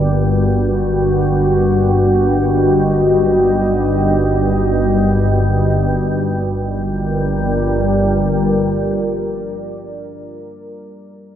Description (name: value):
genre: dark ambient drone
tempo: free time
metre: none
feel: none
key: unclear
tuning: A4 = 440 Hz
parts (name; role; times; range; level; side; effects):
- deep dark ambient pad; sustained chords; 0.0-9.8 s; G3 to Eb5; -18 LUFS; left 1 dB; chorus, built-in reverb
- organ-like drone; drone; 0.0-9.4 s; G1 to G2; -16 LUFS; equal; ensemble chorus, built-in reverb
room: wet lush hall reverb, RT60 2.7 s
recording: dreamy mix soaked in reverb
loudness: -13 LUFS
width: side -10 dB against mid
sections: 0.0-5.9 A section; 5.9-9.6 B section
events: filter sweep on synth drone 0.0-5.9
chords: 0.0 Ebm; 5.9 Gm7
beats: free time